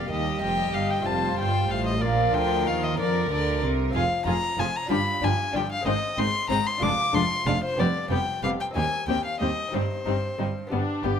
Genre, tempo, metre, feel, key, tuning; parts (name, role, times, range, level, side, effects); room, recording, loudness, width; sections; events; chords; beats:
classical, baroque-style concerto movement with solo episodes; 62 BPM (dotted quarters); 6/8; straight; Bb major, C minor from 3.9 s; A4 = 442 Hz
warm chamber violin section; melody; 0.0-11.2 s; D4 to Eb5; -34 LUFS; left 4 dB
warm violin; melody; 0.0-10.7 s; C5 to D6; -27 LUFS; left 4 dB
rich chamber violin section; second line; 0.0-11.1 s; B3 to Bb4; -32 LUFS; left 3 dB
dark chamber viola section; accompaniment; 0.0-11.1 s; D3 to Ab3; -33 LUFS; equal
lute; accompaniment; 0.0-11.2 s; Eb2 to C5; -33 LUFS; right 2 dB
rich chamber double bass section; bass; 0.0-11.1 s; F1 to F2; -30 LUFS; right 2 dB
warm chamber cello section; bass; 0.0-11.1 s; Eb2 to F3; -30 LUFS; right 2 dB
moderate recital hall reverb, RT60 1.5 s; close, detailed microphones; -22 LUFS; side -8 dB against mid
0.0-11.2 A section
0.1 Eb; 1.1 F; 2.0 Bb; 3.9 Fm; 4.9 G5; 5.9 Ab; 6.8 Ddim/F; 7.8 G7/F; 8.8 Cm/Eb; 9.7 Cm/G
| 0.10 1.06 | 2.02 2.98 | 3.94 4.91 | 5.87 6.83 | 7.79 8.76 | 9.74 10.72